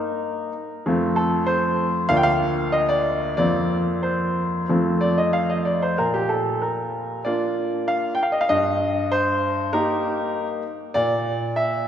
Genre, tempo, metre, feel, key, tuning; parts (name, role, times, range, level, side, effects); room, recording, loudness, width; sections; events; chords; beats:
classical-period piano sonatina; 91-99 BPM; 4/4; rubato; Bb major; A4 = 436 Hz
bright baby grand piano; solo; 0.0-11.9 s; D2 to G5; -20 LUFS; equal
wet church reverb, RT60 3.0 s; recorded in a church or concert hall, nothing above 10.4 kHz; -20 LUFS; side -9 dB against mid
0.0-11.9 A section
0.0 Eb5; 0.9 F; 2.1 Bb/D; 3.4 Fsus4; 4.7 F; 6.0 Bb; 8.5 Eb/G; 11.0 Gm/Bb (rootless)
0.25 | 0.86 1.48 2.10 2.73 | 3.37 4.03 4.69 5.34 | 5.99 6.63 7.26 7.88 | 8.50 9.12 9.73 10.34 | 10.96 11.57